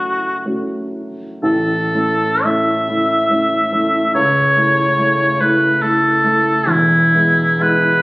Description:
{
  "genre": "classical, romantic duo for oboe and grand piano",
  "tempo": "56-74 BPM",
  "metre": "3/4",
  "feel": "rubato",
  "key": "A major",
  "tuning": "A4 = 440 Hz",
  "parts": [
    { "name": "mellow oboe", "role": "melody", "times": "0.0-8.0 s", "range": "E4 to E5", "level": "-14 LUFS", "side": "equal", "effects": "none" },
    { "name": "dark grand piano", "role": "accompaniment", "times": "0.0-8.0 s", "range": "E1 to F#4", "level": "-18 LUFS", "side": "equal", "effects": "none" }
  ],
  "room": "wet recital hall reverb, RT60 1.5 s",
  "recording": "recorded on a phone in the room, club reverb, compression",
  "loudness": "-13 LUFS",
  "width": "side -23 dB against mid",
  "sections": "0.0-1.4 A section; 1.4-8.0 B section",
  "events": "none",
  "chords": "0.0 F#m; 1.4 A; 4.1 A/C#; 6.7 E",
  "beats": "0.44 | 1.44 2.44 3.30 | 4.15 4.99 5.82 | 6.69 7.61"
}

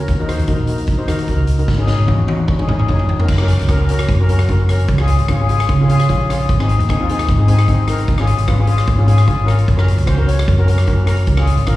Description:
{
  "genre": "calypso",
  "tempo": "150 BPM",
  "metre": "4/4",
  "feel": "swing 53% on 16ths",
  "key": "unclear",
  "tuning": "A4 = 440 Hz",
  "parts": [
    { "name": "steel pan", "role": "accompaniment", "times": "0.0-11.7 s", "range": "C4 to F5", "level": "-21 LUFS", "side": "left 3 dB", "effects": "slapback echo" },
    { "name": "hollow-body short-scale fingered electric bass", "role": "bass", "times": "0.0-11.8 s", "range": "Gb1 to Db3", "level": "-15 LUFS", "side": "equal", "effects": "none" },
    { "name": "street-band drum kit", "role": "drums", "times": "0.1-11.8 s", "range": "crash cymbal, hi-hat, kick drum, rim click, snare drum, toms", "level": "-19 LUFS", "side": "equal", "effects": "none" }
  ],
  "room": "small room reverb",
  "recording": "live gig heard through the venue's PA, recital hall reverb, small room ambience",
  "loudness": "-13 LUFS",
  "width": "side -16 dB against mid",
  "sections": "0.0-3.3 A section; 3.3-11.8 B section",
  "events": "drum fill 1.7-3.3; steel pan fill 5.7-6.5",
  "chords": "0.1 Ebm7; 1.7 Ab7sus4; 3.3 Gb; 4.9 Db; 6.5 Ab; 8.1 Db/Ab; 9.7 Gb",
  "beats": "| 0.07 0.48 0.88 1.28 | 1.68 2.08 2.48 2.88 | 3.28 3.68 4.08 4.48 | 4.88 5.28 5.68 6.08 | 6.48 6.88 7.28 7.68 | 8.08 8.48 8.88 9.28 | 9.68 10.07 10.47 10.87 | 11.27 11.67"
}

